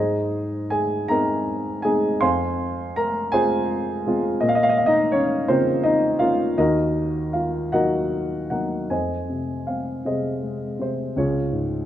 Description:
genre	classical, lyrical solo piano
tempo	51-57 BPM (dotted quarters)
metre	6/8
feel	rubato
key	unclear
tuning	A4 = 440 Hz
part	dark baby grand piano	solo	0.0-11.9 s	Db2 to C6	-20 LUFS	equal	none
room	moderate recital hall reverb, RT60 1.6 s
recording	dark, warm production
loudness	-20 LUFS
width	side -11 dB against mid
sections	0.0-8.9 A section; 8.9-11.9 B section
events	none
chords	0.0 Ab; 2.2 Fm; 4.4 Bbm; 6.6 Ebm; 8.9 Fm7; 11.2 Db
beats	1.09 | 2.22 3.34 | 4.41 5.48 | 6.59 7.74 | 8.91 10.06 | 11.17

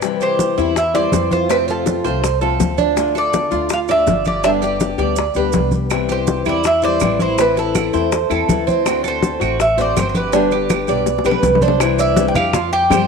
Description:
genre	latin, Cuban son and guajira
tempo	163 BPM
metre	4/4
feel	straight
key	C major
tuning	A4 = 440 Hz
part	flamenco guitar	accompaniment	0.0-13.1 s	C3 to G4	-21 LUFS	left 13 dB	none
part	bongos	percussion	0.0-13.1 s	none	-24 LUFS	left 12 dB	none
part	congas	percussion	0.0-13.1 s	none	-23 LUFS	equal	none
part	maracas	percussion	0.0-13.1 s	none	-32 LUFS	right 15 dB	none
part	Cuban tres	melody	0.2-13.1 s	A4 to G5	-19 LUFS	right 1 dB	none
part	Cuban tres	arpeggios	0.2-13.1 s	C4 to D5	-21 LUFS	right 12 dB	none
part	upright bass	bass	0.6-13.1 s	G1 to G2	-24 LUFS	right 1 dB	none
part	claves	percussion	5.9-13.1 s	none	-28 LUFS	right 16 dB	none
room	light reverb, small room ambience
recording	1960s-style stereo with parts hard left and right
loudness	-14 LUFS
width	side -5 dB against mid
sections	0.0-11.8 A section; 11.8-13.1 B section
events	drum fill 11.1-11.8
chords	0.0 C; 1.5 F; 3.0 Dm; 4.4 G; 5.9 C; 7.4 Am; 8.9 D7; 10.3 G; 11.8 Cadd9; 12.5 Fsus2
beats	| 0.03 0.40 0.76 1.13 | 1.50 1.87 2.23 2.60 | 2.97 3.34 3.71 4.07 | 4.44 4.81 5.18 5.54 | 5.91 6.28 6.65 7.02 | 7.39 7.75 8.12 8.49 | 8.86 9.23 9.60 9.96 | 10.33 10.70 11.07 11.44 | 11.80 12.17 12.54 12.91

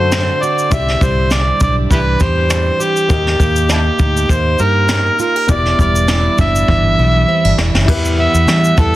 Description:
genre	acoustic pop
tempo	100 BPM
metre	4/4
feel	swing 55% on 16ths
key	unclear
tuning	A4 = 440 Hz
part	overdriven harmonica	melody	0.0-9.0 s	D4 to E5	-16 LUFS	equal	ping-pong delay
part	felt-muted upright piano	accompaniment	0.0-9.0 s	A3 to Eb5	-26 LUFS	left 6 dB	none
part	fingerpicked plugged-in steel-string acoustic guitar	accompaniment	0.0-9.0 s	E2 to G4	-20 LUFS	right 5 dB	none
part	vintage muted fingered electric bass	bass	0.0-9.0 s	E1 to E3	-16 LUFS	equal	none
part	jazz brush drum kit	drums	0.1-8.9 s	crash cymbal, kick drum, shaker, snare drum	-17 LUFS	equal	none
room	light reverb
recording	dense, heavily limited modern master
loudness	-11 LUFS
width	side -16 dB against mid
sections	0.0-7.9 A section; 7.9-9.0 B section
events	drum fill 6.7-7.9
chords	0.0 D7; 0.7 Cadd9; 3.1 Eb; 5.5 Em7; 7.9 Em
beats	0.12 | 0.71 1.31 1.91 2.50 | 3.10 3.70 4.30 4.89 | 5.49 6.09 6.68 7.28 | 7.88 8.48

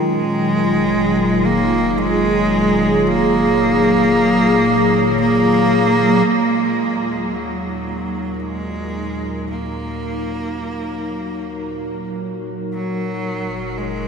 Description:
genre	ambient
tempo	free time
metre	none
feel	none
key	Eb minor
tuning	A4 = 440 Hz
part	bright cello	melody	0.0-14.1 s	Gb3 to Bb3	-18 LUFS	equal	diffuse ambient delay
part	warbly tape-like pad	sustained chords	0.0-14.1 s	Bb2 to Bb4	-19 LUFS	equal	chorus, built-in reverb
part	deep rumbling drone	bass	0.6-14.1 s	Gb1 to Eb2	-34 LUFS	equal	built-in reverb
part	organ-like drone	drone	0.0-14.1 s	Eb3 to Gb3	-29 LUFS	right 1 dB	ensemble chorus, built-in reverb
room	wet huge ambient reverb, RT60 7.5 s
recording	none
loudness	-16 LUFS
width	side -6 dB against mid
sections	0.0-6.3 A section; 6.3-14.1 B section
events	fade-out on synth drone 0.0-6.3; filter sweep on ambient pad 0.0-6.3; fade-in on ambient pad 6.3-14.1; fade-in on synth drone 6.3-14.1; fade-in on cello 6.3-14.1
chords	0.0 Gbmaj9; 6.3 Ebm; 12.7 Gb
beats	free time

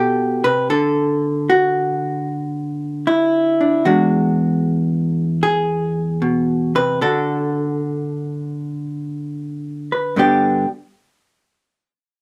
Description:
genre	solo jazz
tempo	76 BPM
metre	4/4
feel	swing 67% on 8ths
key	G major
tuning	A4 = 440 Hz
part	vintage hollow-body jazz guitar	solo	0.0-10.7 s	E2 to B4	-19 LUFS	equal	none
room	light reverb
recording	none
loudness	-19 LUFS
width	mono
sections	0.0-10.2 A section; 10.2-12.2 B section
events	none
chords	0.0 Am7; 0.7 N.C.; 3.9 E9; 7.0 D; 10.2 G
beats	| 0.69 1.48 2.27 3.06 | 3.85 4.64 5.43 6.22 | 7.01 7.80 8.59 9.38 | 10.17

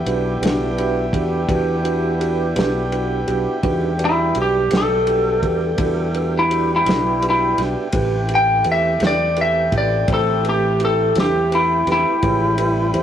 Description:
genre	slow blues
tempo	56 BPM (dotted quarters)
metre	12/8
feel	straight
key	E minor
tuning	A4 = 441 Hz
part	tonewheel organ	sustained chords	0.0-13.0 s	D#3 to G4	-27 LUFS	right 1 dB	overdrive, slow rotary speaker
part	warm horn section	sustained chords	0.0-13.0 s	G4 to B5	-29 LUFS	equal	none
part	tine electric piano	accompaniment	0.1-13.0 s	C4 to C5	-24 LUFS	right 4 dB	medium stereo tremolo
part	fingered electric bass	bass	0.1-13.0 s	A1 to E2	-23 LUFS	equal	none
part	warm soul drum kit	drums	0.1-13.0 s	kick drum, ride cymbal, snare drum	-26 LUFS	equal	none
part	lightly driven lead guitar	melody	4.0-13.0 s	E4 to G5	-17 LUFS	left 1 dB	none
room	moderate stone room reverb, RT60 1.2 s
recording	rough rehearsal-room recording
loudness	-16 LUFS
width	side -10 dB against mid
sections	0.0-13.0 A section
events	lead electric guitar solo 0.0-13.0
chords	0.0 Em7; 7.9 Am7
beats	0.42 1.49 2.57 | 3.64 4.72 5.79 6.87 | 7.94 9.01 10.09 11.16 | 12.23

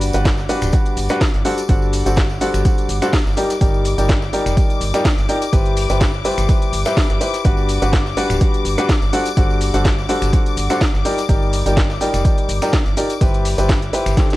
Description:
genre	piano house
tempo	125 BPM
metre	4/4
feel	swing 54% on 16ths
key	G major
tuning	A4 = 439 Hz
part	clear symphonic string section	sustained chords	0.0-14.4 s	D6	-29 LUFS	left 7 dB	sidechain pumping
part	warm upright piano	riff	0.0-14.4 s	D3 to G5	-20 LUFS	left 1 dB	sidechain pumping
part	organ-like FM bass	bass	0.0-14.2 s	D1 to G1	-21 LUFS	equal	sidechain pumping
part	breakbeat sampler-style drum kit	drums	0.0-14.3 s	hi-hat, snare drum	-34 LUFS	equal	none
part	garage drum kit	drums	0.0-14.4 s	finger snaps, hi-hat, shaker, snare drum	-24 LUFS	equal	none
part	tambourine	percussion	0.1-14.4 s	none	-37 LUFS	left 3 dB	none
part	electronic kick drum	drums	0.2-14.3 s	none	-17 LUFS	equal	overdrive
room	light reverb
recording	home recording on cassette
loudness	-14 LUFS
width	side -17 dB against mid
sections	0.0-14.4 A section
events	drum fill 14.2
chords	0.0 Gmaj7; 1.4 D7/G; 3.4 Ebmaj7/G; 5.5 Cmaj7/G; 7.5 Gmaj7; 9.1 D7/G; 11.1 Ebmaj7/G; 13.2 Cmaj7/G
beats	0.25 0.73 1.21 | 1.69 2.17 2.65 3.13 | 3.61 4.09 4.57 5.05 | 5.53 6.01 6.49 6.97 | 7.45 7.93 8.41 8.89 | 9.37 9.85 10.33 10.81 | 11.29 11.77 12.25 12.73 | 13.21 13.69 14.17

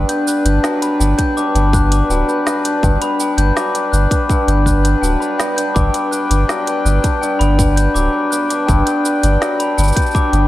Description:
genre	folktronica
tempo	82 BPM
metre	4/4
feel	straight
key	G major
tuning	A4 = 438 Hz
part	glockenspiel with rubber mallets	second line	0.0-10.5 s	G5 to G6	-21 LUFS	left 3 dB	tape echo
part	pedal harmonium	sustained chords	0.0-10.5 s	D4 to G5	-23 LUFS	right 2 dB	none
part	hammered dulcimer	arpeggios	0.0-10.5 s	G2 to B4	-18 LUFS	left 2 dB	low-pass filter, tape echo
part	warm sub bass	bass	0.0-10.5 s	D1 to G1	-14 LUFS	equal	none
part	organic electronic drum kit	drums	0.1-10.5 s	hi-hat, shaker, snare drum	-23 LUFS	right 2 dB	none
part	electronic kick drum	drums	1.2-10.3 s	none	-17 LUFS	equal	none
room	light reverb, studio reverb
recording	none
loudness	-13 LUFS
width	side -15 dB against mid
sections	0.0-10.5 A section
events	filter sweep on hammered dulcimer 0.0-10.5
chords	0.0 Gmaj7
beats	0.64 1.37 2.10 | 2.83 3.56 4.29 5.03 | 5.76 6.49 7.22 7.95 | 8.68 9.42 10.15

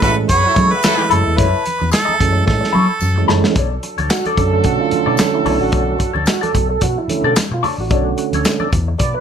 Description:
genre	funk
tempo	110 BPM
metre	4/4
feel	swing 56% on 16ths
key	B dorian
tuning	A4 = 440 Hz
part	clear harmonica	melody	0.0-3.2 s	A4 to C#5	-17 LUFS	right 3 dB	none
part	warm horn section	second line	0.0-9.2 s	C#3 to B4	-23 LUFS	right 1 dB	none
part	clean electric guitar	accompaniment	0.0-9.2 s	D4 to E5	-21 LUFS	left 6 dB	wah, wide subtle chorus
part	mellow tonewheel organ	stabs	0.0-9.2 s	D3 to D5	-19 LUFS	right 6 dB	overdrive, chorus vibrato, slow rotary speaker
part	overdriven fingered electric bass	bass	0.0-9.1 s	A1 to F#3	-19 LUFS	left 1 dB	none
part	warm soul drum kit	drums	0.0-9.1 s	handclaps, hi-hat, kick drum, snare drum	-18 LUFS	left 1 dB	none
part	congas	percussion	0.0-9.1 s	none	-28 LUFS	right 5 dB	none
part	tambourine	percussion	0.8-8.6 s	none	-31 LUFS	left 8 dB	none
room	moderate studio reverb, RT60 0.6 s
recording	none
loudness	-13 LUFS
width	side -8 dB against mid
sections	0.0-3.6 A section; 3.6-9.2 B section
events	drum fill 2.5-3.6; tonewheel organ solo 3.6-9.2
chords	0.0 F#m7; 3.6 Bm9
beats	0.30 0.84 | 1.38 1.93 2.47 3.01 | 3.56 4.10 4.65 5.19 | 5.73 6.28 6.82 7.37 | 7.91 8.45 9.00

